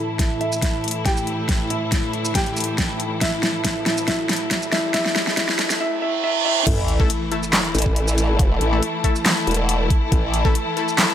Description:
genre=heavy wobble dubstep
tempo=139 BPM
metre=4/4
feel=half-time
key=unclear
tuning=A4 = 440 Hz
part: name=warm baby grand piano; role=melody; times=0.0-6.7 s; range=E4 to G5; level=-25 LUFS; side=equal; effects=digital delay
part: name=rich studio string section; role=sustained chords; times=0.0-11.1 s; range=A2 to E4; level=-26 LUFS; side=left 1 dB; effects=sidechain pumping
part: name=riser, reverse cymbal and sub drop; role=sound effects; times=2.5-8.4 s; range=none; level=-27 LUFS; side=right 3 dB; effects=none
part: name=airy breathy pad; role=texture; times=0.0-11.1 s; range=E4 to A5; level=-31 LUFS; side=equal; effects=chorus, sidechain pumping
part: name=dubstep drum kit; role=drums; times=0.2-11.1 s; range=crash cymbal, handclaps, hi-hat, shaker, snare drum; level=-22 LUFS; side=equal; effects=overdrive
part: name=electronic kick drum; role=drums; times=0.2-10.5 s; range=none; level=-21 LUFS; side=equal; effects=overdrive
part: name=formant-sweep wobble bass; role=bass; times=6.7-10.5 s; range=E1 to A1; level=-20 LUFS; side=equal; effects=chorus, overdrive
part: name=orchestra-hit-like synth stab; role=stabs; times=7.0-10.9 s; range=A3 to A4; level=-27 LUFS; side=left 4 dB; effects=built-in reverb, digital delay
room=light reverb, digital ambience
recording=high-pass filter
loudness=-18 LUFS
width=side -10 dB against mid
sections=0.0-6.7 A section; 6.7-11.1 B section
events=build-up 0.0-6.7; drum fill 0.0-5.8; filter sweep 0.0-6.7; riser 2.5-5.8; reverse cymbal 5.8-6.7; drop 6.7-11.1; impact 6.7-8.4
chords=0.0 A5

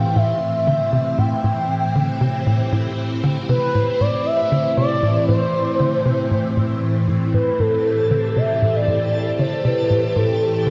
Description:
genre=ambient, sequencer-driven space music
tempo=117 BPM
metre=4/4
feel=straight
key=A minor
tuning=A4 = 441 Hz
part: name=expressive synth lead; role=melody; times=0.0-10.7 s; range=A4 to G5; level=-23 LUFS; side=equal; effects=chorus, shimmer reverb, tape echo
part: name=phased string machine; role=sustained chords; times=0.0-10.7 s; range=A2 to G4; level=-24 LUFS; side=equal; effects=ensemble chorus, phaser, shimmer reverb
part: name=tight sequencer bass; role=riff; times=0.0-10.7 s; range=A2 to D3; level=-24 LUFS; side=equal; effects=analog chorus, tape echo
part: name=twinkling granular texture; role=texture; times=7.8-10.7 s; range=A4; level=-35 LUFS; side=equal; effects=built-in reverb, shimmer reverb
room=wet concert hall reverb, RT60 2.3 s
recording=worn, warbling old tape, cassette tape, warbly pitch drift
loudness=-19 LUFS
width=mono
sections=0.0-7.3 A section; 7.3-10.7 B section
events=none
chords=0.0 Am7

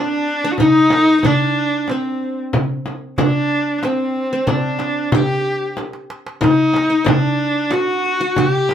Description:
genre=Arabic maqam ensemble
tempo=93 BPM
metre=3/4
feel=straight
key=D maqam hijaz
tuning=A4 = 440 Hz
part: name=rich viola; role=melody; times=0.0-8.7 s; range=C4 to G4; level=-18 LUFS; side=equal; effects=none
part: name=qanun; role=second line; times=0.0-8.7 s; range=C4 to G4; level=-21 LUFS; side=left 1 dB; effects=none
part: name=darbuka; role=percussion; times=0.3-8.7 s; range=none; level=-22 LUFS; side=right 1 dB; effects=none
part: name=frame drum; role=percussion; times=0.6-8.7 s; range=none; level=-22 LUFS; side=equal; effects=none
room=wet studio ambience, RT60 0.4 s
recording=band playing live in one room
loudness=-15 LUFS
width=side -9 dB against mid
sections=0.0-8.7 A section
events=drum fill 5.8-6.4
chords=none

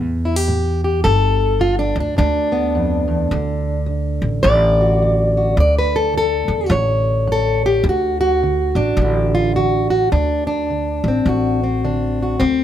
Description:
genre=acoustic country blues, solo or duo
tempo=106 BPM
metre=4/4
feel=swing 60% on 8ths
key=D mixolydian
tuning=A4 = 441 Hz
part: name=fingerpicked plugged-in steel-string acoustic guitar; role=melody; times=0.0-12.6 s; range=D2 to D5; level=-17 LUFS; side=equal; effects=plate reverb
part: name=upright bass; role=bass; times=0.0-12.6 s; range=G1 to E2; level=-19 LUFS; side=equal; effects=none
room=light reverb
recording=none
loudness=-15 LUFS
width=side -10 dB against mid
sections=0.0-7.8 A section; 7.8-12.6 B section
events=steel-string acoustic guitar solo 0.0-7.8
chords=0.0 A5; 1.0 G7; 3.3 D; 6.7 A; 7.8 D7

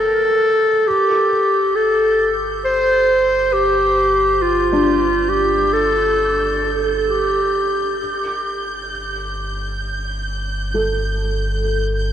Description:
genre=ambient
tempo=free time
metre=none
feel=none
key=unclear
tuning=A4 = 440 Hz
part: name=bright clarinet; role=melody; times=0.0-8.0 s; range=F4 to C5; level=-15 LUFS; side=equal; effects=diffuse ambient delay
part: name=felt-muted upright piano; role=arpeggios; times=0.0-12.1 s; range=D4 to A5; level=-25 LUFS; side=left 1 dB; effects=diffuse ambient delay
part: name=deep rumbling drone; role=bass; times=0.0-12.1 s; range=G1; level=-27 LUFS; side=equal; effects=built-in reverb, tube saturation
part: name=rich symphonic violin section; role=texture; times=0.0-12.1 s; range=G6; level=-30 LUFS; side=right 3 dB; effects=none
room=wet cathedral reverb, RT60 4.7 s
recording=worn, warbling old tape, cassette tape, warbly pitch drift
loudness=-15 LUFS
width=side -9 dB against mid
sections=0.0-12.1 A section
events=fade-in on synth drone 0.0-12.1; fade-in on violin section 0.0-12.1; fade-out on felt piano 0.0-12.1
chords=0.0 G5

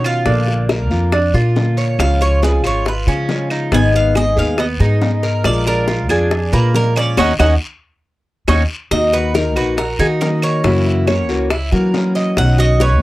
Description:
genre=latin, Cuban son and guajira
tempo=139 BPM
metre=4/4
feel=straight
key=Eb minor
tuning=A4 = 440 Hz
part: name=Cuban tres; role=melody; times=0.0-13.0 s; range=Ab4 to Ab5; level=-20 LUFS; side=right 2 dB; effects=none
part: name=picked acoustic archtop guitar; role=accompaniment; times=0.0-13.0 s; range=B2 to Ab4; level=-20 LUFS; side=left 3 dB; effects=none
part: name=Cuban tres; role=arpeggios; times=0.0-13.0 s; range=Bb3 to Eb5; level=-22 LUFS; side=right 3 dB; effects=none
part: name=upright bass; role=bass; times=0.0-13.0 s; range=Ab1 to Gb3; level=-16 LUFS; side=equal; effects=none
part: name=claves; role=percussion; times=0.0-12.6 s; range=none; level=-27 LUFS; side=right 4 dB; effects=none
part: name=guiro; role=percussion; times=0.0-13.0 s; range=none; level=-32 LUFS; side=left 3 dB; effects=none
part: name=bongos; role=percussion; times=0.3-13.0 s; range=none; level=-22 LUFS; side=left 4 dB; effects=none
room=light reverb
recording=dry, close 1970s-style studio recording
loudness=-13 LUFS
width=side -17 dB against mid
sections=0.0-8.9 A section; 8.9-13.0 A section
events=band accent 7.2-8.9; drum fill 8.7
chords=0.3 Bb; 2.0 Db; 3.7 Abm; 5.5 Bb7; 7.2 Ebm7; 8.9 Ebm; 10.6 Gb7; 12.4 Badd9

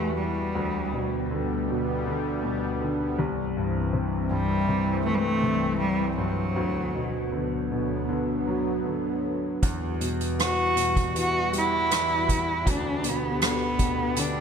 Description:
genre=pop ballad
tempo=79 BPM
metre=4/4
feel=straight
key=G major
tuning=A4 = 438 Hz
part: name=warm cello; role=melody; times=0.0-14.4 s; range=F#3 to F#4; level=-26 LUFS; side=right 1 dB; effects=none
part: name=clear grand piano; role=accompaniment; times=0.0-14.4 s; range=C2 to G3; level=-29 LUFS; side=left 1 dB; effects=lush chorus
part: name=sweeping resonant pad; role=sustained chords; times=0.0-14.4 s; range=C2 to G4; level=-30 LUFS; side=equal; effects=chorus, tremolo
part: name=soft-mallet drum kit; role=drums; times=9.6-14.3 s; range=hi-hat, kick drum, rim click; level=-27 LUFS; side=right 1 dB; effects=none
room=moderate lush hall reverb, RT60 2.1 s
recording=bright 1980s-style digital production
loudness=-24 LUFS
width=side -7 dB against mid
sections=0.0-14.4 A section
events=none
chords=0.0 Emadd9; 0.6 G/D; 3.2 C; 6.6 Bm/D; 9.6 Emadd9; 12.7 G/D

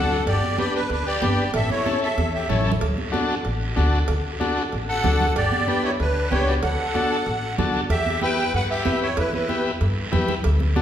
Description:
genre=latin, cumbia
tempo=189 BPM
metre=4/4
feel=straight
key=unclear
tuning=A4 = 439 Hz
part: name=musette accordion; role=melody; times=0.0-2.7, 4.9-9.6 s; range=B4 to G5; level=-25 LUFS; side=right 2 dB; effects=none
part: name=growling trumpet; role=second line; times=0.0-2.7, 4.9-9.6 s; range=D4 to B4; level=-29 LUFS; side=left 4 dB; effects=none
part: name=combo organ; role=accompaniment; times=0.0-10.8 s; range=C#4 to B4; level=-26 LUFS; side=left 3 dB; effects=none
part: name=upright bass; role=bass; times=0.0-10.8 s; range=G1 to G2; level=-24 LUFS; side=equal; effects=none
part: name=guiro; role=percussion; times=0.1-10.8 s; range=none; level=-35 LUFS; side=right 4 dB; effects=none
part: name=cowbell and timbales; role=percussion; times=0.3-10.6 s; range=none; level=-33 LUFS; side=right 4 dB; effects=none
part: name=congas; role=percussion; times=0.4-10.8 s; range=none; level=-29 LUFS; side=right 3 dB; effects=none
room=wet recital hall reverb, RT60 1.8 s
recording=recorded in a church or concert hall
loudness=-20 LUFS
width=side -10 dB against mid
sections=0.0-7.9 A section; 7.9-10.8 B section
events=drum fill 2.2-2.8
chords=0.3 G; 1.5 A; 2.8 D; 5.4 G; 6.6 D; 7.9 Em

